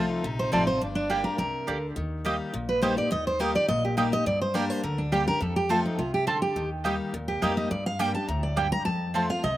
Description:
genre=bluegrass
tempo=209 BPM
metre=4/4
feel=straight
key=unclear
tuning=A4 = 441 Hz
part: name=clear fiddle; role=second line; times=0.0-1.8 s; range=D4 to F4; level=-39 LUFS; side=left 4 dB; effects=slapback echo
part: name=picked steel-string acoustic guitar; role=accompaniment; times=0.0-9.6 s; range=F2 to G4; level=-30 LUFS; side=left 3 dB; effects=slapback echo
part: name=mandolin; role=stabs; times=0.0-9.2 s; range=Bb3 to A5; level=-29 LUFS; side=right 3 dB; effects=slapback echo
part: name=upright bass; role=bass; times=0.0-9.6 s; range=G1 to G2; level=-34 LUFS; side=equal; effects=none
part: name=picked steel-string acoustic guitar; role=melody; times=0.4-9.6 s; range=D4 to Bb5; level=-27 LUFS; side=right 1 dB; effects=slapback echo
room=little or no reverb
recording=recorded outdoors, with no room sound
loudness=-24 LUFS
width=side -14 dB against mid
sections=0.0-2.0 A section; 2.0-9.6 B section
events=none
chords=0.0 F; 0.8 Gm; 2.0 Eb; 4.3 Gm; 5.4 F; 6.6 Eb; 7.7 Gm; 8.9 F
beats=0.24 0.53 | 0.81 1.10 1.39 1.68 | 1.96 2.25 2.54 2.83 | 3.11 3.40 3.69 3.98 | 4.26 4.55 4.84 5.12 | 5.41 5.70 5.99 6.27 | 6.56 6.85 7.14 7.42 | 7.71 8.00 8.29 8.57 | 8.86 9.15 9.44

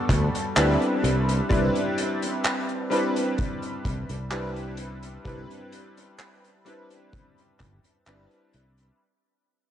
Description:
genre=vaporwave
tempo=64 BPM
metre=4/4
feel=straight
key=unclear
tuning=A4 = 437 Hz
part: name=bright electric grand piano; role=accompaniment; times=0.0-9.0 s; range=G3 to B4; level=-26 LUFS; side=equal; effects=analog chorus, analog delay
part: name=warbly tape-like pad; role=sustained chords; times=0.0-9.0 s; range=G3 to D6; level=-37 LUFS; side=right 1 dB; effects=none
part: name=fretless electric bass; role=bass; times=0.1-8.9 s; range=G1 to D2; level=-26 LUFS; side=equal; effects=low-pass filter
part: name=kick drum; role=drums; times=0.1-7.8 s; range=none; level=-29 LUFS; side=equal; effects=vintage 12-bit sampler grit
part: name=loose indie drum kit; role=drums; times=0.1-9.0 s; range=handclaps, hi-hat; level=-30 LUFS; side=equal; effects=vintage 12-bit sampler grit, gated reverb
room=light reverb, small room ambience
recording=cassette tape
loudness=-23 LUFS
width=side -10 dB against mid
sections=0.0-9.0 A section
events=fade-out 0.0-9.0; filter sweep on fretless electric bass 0.0-9.0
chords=0.0 Gmaj9; 1.0 Cmaj9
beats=0.57 | 1.50 2.44 3.38 4.32 | 5.25 6.19 7.13 8.07

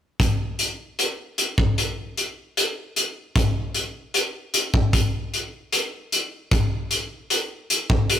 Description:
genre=pop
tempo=76 BPM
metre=4/4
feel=straight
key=none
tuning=none
part: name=loose indie drum kit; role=drums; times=0.2-8.2 s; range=hi-hat, kick drum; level=-20 LUFS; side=equal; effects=none
room=light reverb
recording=rough rehearsal-room recording, warm saturation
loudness=-21 LUFS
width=side -10 dB against mid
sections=0.2-8.2 A section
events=none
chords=none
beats=| 0.20 0.99 1.78 2.57 | 3.36 4.15 4.94 5.73 | 6.52 7.30 8.10

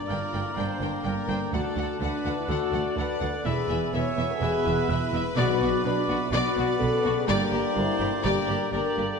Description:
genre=cinematic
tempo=125 BPM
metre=4/4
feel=straight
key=unclear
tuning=A4 = 440 Hz
part: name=bright clarinet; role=second line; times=0.0-9.2 s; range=A4 to D5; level=-38 LUFS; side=left 4 dB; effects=none
part: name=hollow concert flute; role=second line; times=0.0-9.2 s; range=G#5 to B5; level=-38 LUFS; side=left 4 dB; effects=none
part: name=rich studio violin section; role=second line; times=0.0-9.2 s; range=G4 to D5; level=-37 LUFS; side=left 6 dB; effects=none
part: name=warm oboe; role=second line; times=0.0-9.2 s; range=D5 to G#5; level=-38 LUFS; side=right 3 dB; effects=none
part: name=bright trombone section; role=sustained chords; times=0.0-9.2 s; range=B2 to B3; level=-35 LUFS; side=right 4 dB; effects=none
part: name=mellow French horn section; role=sustained chords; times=0.0-9.2 s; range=Bb3 to B4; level=-30 LUFS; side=left 6 dB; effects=none
part: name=bright trumpet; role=stabs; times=0.0-9.2 s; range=D5 to E5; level=-33 LUFS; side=right 1 dB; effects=none
part: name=rich chamber violin section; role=melody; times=0.1-9.1 s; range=F#4 to G5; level=-34 LUFS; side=left 4 dB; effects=none
part: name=rich symphonic viola section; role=accompaniment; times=0.1-9.1 s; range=Bb3 to Bb4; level=-36 LUFS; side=right 1 dB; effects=none
part: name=rich studio double bass section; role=bass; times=0.1-9.0 s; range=E1 to D2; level=-32 LUFS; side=right 4 dB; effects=none
part: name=rich symphonic cello section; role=bass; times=0.1-9.0 s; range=D2 to B2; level=-32 LUFS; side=right 3 dB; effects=none
part: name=timpani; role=percussion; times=5.4-6.1 s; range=B2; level=-34 LUFS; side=left 1 dB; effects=none
room=wet scoring stage reverb, RT60 1.6 s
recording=nothing above 10.9 kHz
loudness=-23 LUFS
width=side -5 dB against mid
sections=0.0-9.2 A section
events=none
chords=0.0 Gm; 1.5 D; 3.5 E; 5.4 Bm; 7.3 Gm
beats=0.10 0.58 1.06 | 1.54 2.02 2.50 2.97 | 3.46 3.94 4.42 4.89 | 5.37 5.85 6.33 6.81 | 7.29 7.77 8.25 8.73

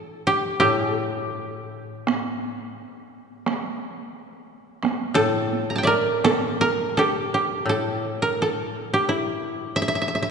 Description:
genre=japanese traditional, Japanese chamber music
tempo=81-90 BPM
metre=2/4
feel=rubato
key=A in sen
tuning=A4 = 440 Hz
part: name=koto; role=melody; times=0.0-2.5, 5.2-10.3 s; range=E4 to Bb5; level=-22 LUFS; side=right 1 dB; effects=none
part: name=koto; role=accompaniment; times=0.6-2.8, 5.1-9.7 s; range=A2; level=-29 LUFS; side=left 3 dB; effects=none
part: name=taiko ensemble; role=percussion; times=2.1-6.8 s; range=none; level=-27 LUFS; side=right 4 dB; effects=none
room=wet church reverb, RT60 3.2 s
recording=recorded in a church or concert hall, nothing above 11.0 kHz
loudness=-21 LUFS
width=side -6 dB against mid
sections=0.0-7.7 A section; 7.7-10.3 B section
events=none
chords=none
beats=| 0.62 1.34 | 2.07 2.77 | 3.46 4.14 | 4.82 5.51 | 6.22 6.95 | 7.68 8.38 | 9.06 9.73

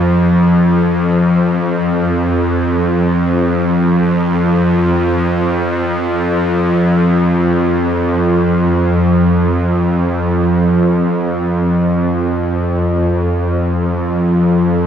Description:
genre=world meditative, free-time meditation music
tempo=free time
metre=none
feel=none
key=unclear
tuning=A4 = 439 Hz
part: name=bowed-like drone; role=solo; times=0.0-14.9 s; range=F2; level=-12 LUFS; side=equal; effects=built-in reverb, tape echo
room=wet huge ambient reverb, RT60 3.9 s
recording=none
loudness=-12 LUFS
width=side -8 dB against mid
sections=0.0-14.9 A section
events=none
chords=none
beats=free time

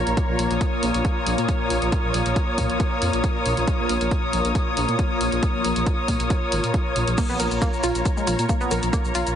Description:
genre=driving peak-time techno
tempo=137 BPM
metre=4/4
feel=straight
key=Bb minor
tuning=A4 = 440 Hz
part: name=dark detuned saw bass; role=bass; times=0.0-9.3 s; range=Ab1 to Bb2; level=-26 LUFS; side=equal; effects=sidechain pumping
part: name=deep dark ambient pad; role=drone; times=0.0-9.4 s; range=Bb2 to Bb3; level=-29 LUFS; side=left 2 dB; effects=chorus, built-in reverb, sidechain pumping
part: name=muted studio string section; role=texture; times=0.0-9.4 s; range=F4 to Eb6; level=-25 LUFS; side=left 1 dB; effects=sidechain pumping
part: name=punchy analog drum machine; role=drums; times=0.1-9.3 s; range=crash cymbal, hi-hat, shaker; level=-31 LUFS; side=left 1 dB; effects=sidechain pumping on hats, sidechain pumping on cymbals, sidechain pumping on perc
part: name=electronic kick drum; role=drums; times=0.2-9.0 s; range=none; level=-23 LUFS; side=equal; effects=none
part: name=analog pluck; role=riff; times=7.2-9.2 s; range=Ab3 to Bb4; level=-26 LUFS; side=right 1 dB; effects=chorus, tube saturation, sidechain pumping, dub echo
room=light reverb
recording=heavily compressed radio sound, multiband compression, nothing above 10.4 kHz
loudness=-20 LUFS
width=side -9 dB against mid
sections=0.0-9.4 A section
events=none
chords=0.0 Bbm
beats=| 0.17 0.61 1.05 1.49 | 1.92 2.36 2.80 3.24 | 3.67 4.11 4.55 4.99 | 5.43 5.87 6.30 6.74 | 7.18 7.62 8.05 8.49 | 8.93

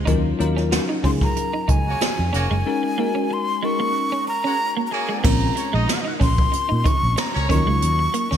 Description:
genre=polished 1980s jazz-funk pop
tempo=93 BPM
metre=4/4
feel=swing 54% on 16ths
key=Eb dorian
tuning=A4 = 440 Hz
part: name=bell-like FM electric piano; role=accompaniment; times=0.0-8.4 s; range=Gb3 to Bb4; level=-26 LUFS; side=left 4 dB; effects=analog chorus
part: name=clean electric guitar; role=riff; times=0.0-8.4 s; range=Ab3 to Eb4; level=-29 LUFS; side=right 6 dB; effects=analog chorus
part: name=vintage muted fingered electric bass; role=bass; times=0.0-8.4 s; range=F1 to Bb2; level=-22 LUFS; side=equal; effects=none
part: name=jazz brush drum kit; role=drums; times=0.1-8.4 s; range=crash cymbal, hi-hat, kick drum, snare drum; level=-22 LUFS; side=equal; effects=gated reverb
part: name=breathy jazz flute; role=melody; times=1.0-8.4 s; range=Ab5 to Db6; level=-24 LUFS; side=left 1 dB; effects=none
part: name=warm horn section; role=second line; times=1.9-7.6 s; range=Ab3 to Eb5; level=-31 LUFS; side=right 1 dB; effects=none
room=light reverb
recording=bright 1980s-style digital production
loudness=-18 LUFS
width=side -9 dB against mid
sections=0.0-5.2 A section; 5.2-8.4 B section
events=none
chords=0.1 Ebm7; 2.7 Ab7sus4; 5.2 Bbm7; 7.5 Ebm9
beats=| 0.07 0.72 1.37 2.01 | 2.66 3.31 3.95 4.60 | 5.24 5.89 6.53 7.18 | 7.82

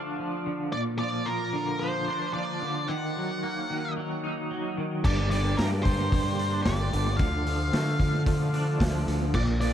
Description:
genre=psychedelic rock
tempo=112 BPM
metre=4/4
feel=straight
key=unclear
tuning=A4 = 440 Hz
part: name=twangy electric guitar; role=riff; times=0.0-9.7 s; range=G2 to Eb4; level=-30 LUFS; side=equal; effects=tremolo, double-tracked left and right, analog delay
part: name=octave-fuzz lead guitar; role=melody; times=0.7-9.7 s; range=Bb4 to Gb5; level=-32 LUFS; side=equal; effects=distortion, analog delay
part: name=fuzz fingered electric bass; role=bass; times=5.0-9.7 s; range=G1 to D3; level=-27 LUFS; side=equal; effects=overdrive
part: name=vintage drum kit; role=drums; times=5.0-9.7 s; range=crash cymbal, hi-hat, kick drum, snare drum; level=-28 LUFS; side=equal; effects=analog delay
part: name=bright tonewheel organ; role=sustained chords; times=5.1-9.7 s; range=F3 to Bb4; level=-38 LUFS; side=right 4 dB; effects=slow rotary speaker, chorus vibrato
room=studio ambience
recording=echo-heavy mix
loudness=-25 LUFS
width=side -10 dB against mid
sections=0.0-9.7 A section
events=none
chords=0.0 Dm; 0.7 Bb; 2.9 Ebm; 5.0 Gm; 7.2 Dm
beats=0.20 | 0.74 1.27 1.81 2.35 | 2.89 3.43 3.97 4.50 | 5.04 5.58 6.12 6.66 | 7.19 7.73 8.27 8.81 | 9.35

